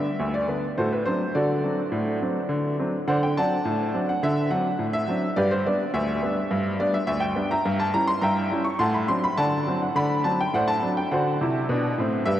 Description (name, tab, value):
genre	ragtime piano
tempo	104 BPM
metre	2/4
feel	straight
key	unclear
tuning	A4 = 439 Hz
part	clear upright piano	solo	0.0-12.4 s	D2 to Db6	-22 LUFS	equal	none
room	wet huge ambient reverb, RT60 8.7 s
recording	in a vast, echoing space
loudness	-22 LUFS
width	side -12 dB against mid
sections	0.0-12.4 A section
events	none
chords	0.0 G (rootless); 0.8 D7/A; 5.4 G; 7.7 Gdim7; 8.8 D7/A; 10.0 D7